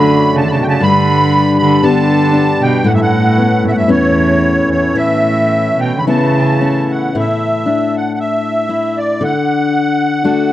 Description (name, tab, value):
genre	celtic folk, Celtic slow air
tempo	54-60 BPM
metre	4/4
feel	rubato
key	A mixolydian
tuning	A4 = 440 Hz
part	musette accordion	melody	0.0-10.5 s	C#5 to B5	-16 LUFS	right 1 dB	none
part	warm cello	second line	0.0-7.1 s	E2 to D3	-16 LUFS	right 3 dB	none
part	fingerpicked steel-string acoustic guitar	accompaniment	0.0-10.5 s	F#2 to G4	-14 LUFS	left 3 dB	none
part	hand-pumped harmonium	sustained chords	0.0-7.1 s	F#3 to C#5	-22 LUFS	right 1 dB	none
room	studio reverb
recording	dry, close 1970s-style studio recording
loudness	-11 LUFS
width	side -13 dB against mid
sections	0.0-7.1 A section; 7.1-10.5 B section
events	none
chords	0.0 Dmaj7/F#; 0.8 G; 2.9 Aadd9; 7.1 Asus4; 9.2 D